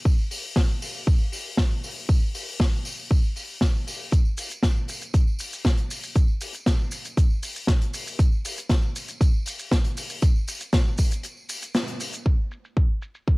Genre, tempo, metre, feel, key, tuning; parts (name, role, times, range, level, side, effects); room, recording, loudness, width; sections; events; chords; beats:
nu-disco; 118 BPM; 4/4; straight
electronic kick drum; drums; 0.1-13.4 s; -20 LUFS; equal
tambourine; percussion; 0.1-12.2 s; -38 LUFS; right 1 dB
open jazz drum kit; drums; 0.3-13.4 s; hi-hat, shaker, snare drum; -29 LUFS; left 1 dB; low-pass filter on hats, low-pass filter on snare, low-pass filter on perc, low-pass filter on room
studio ambience; dry, gritty hardware recording; -22 LUFS; side -26 dB against mid
0.0-12.3 A section; 12.3-13.4 B section
break 11.2-12.3; band accent 11.8; filter sweep on drum 12.3-13.4
| 0.06 0.56 1.07 1.58 | 2.09 2.60 3.11 3.62 | 4.12 4.63 5.14 5.65 | 6.16 6.67 7.17 7.68 | 8.19 8.70 9.21 9.72 | 10.22 10.73 11.24 11.75 | 12.26 12.77 13.28